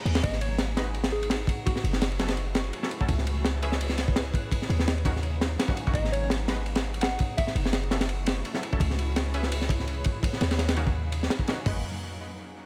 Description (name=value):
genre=drum and bass, jungle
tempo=168 BPM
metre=4/4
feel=swing 54% on 16ths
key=G# minor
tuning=A4 = 441 Hz
part: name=granular cloud pad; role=sustained chords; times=0.0-11.8 s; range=F#3 to C#5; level=-41 LUFS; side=equal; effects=built-in reverb
part: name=warm 808-style bass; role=bass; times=0.1-11.8 s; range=F#1 to D#2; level=-31 LUFS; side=equal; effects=tube saturation
part: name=crunchy breakbeat drum kit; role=drums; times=0.1-11.7 s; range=hi-hat, kick drum, ride cymbal, snare drum, toms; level=-30 LUFS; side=equal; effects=none
part: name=soft struck synth lead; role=melody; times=0.2-1.8, 5.9-7.5 s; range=F#4 to F#5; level=-38 LUFS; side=equal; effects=chorus, dub echo
part: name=orchestra-hit-like synth stab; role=stabs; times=0.8-11.8 s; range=D#3 to E5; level=-40 LUFS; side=equal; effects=built-in reverb, dub echo
room=studio reverb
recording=none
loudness=-27 LUFS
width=mono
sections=0.0-11.7 A section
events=drop 0.0-11.7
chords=0.2 G#m7; 1.7 F#m7; 3.1 C#m7; 4.5 D#m7; 5.9 G#m7; 7.4 F#m7; 8.8 C#m7; 10.2 D#m7; 11.7 G#m7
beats=| 0.23 0.59 0.94 1.30 | 1.66 2.02 2.37 2.73 | 3.09 3.44 3.80 4.16 | 4.52 4.87 5.23 5.59 | 5.95 6.30 6.66 7.02 | 7.37 7.73 8.09 8.45 | 8.80 9.16 9.52 9.87 | 10.23 10.59 10.95 11.30 | 11.66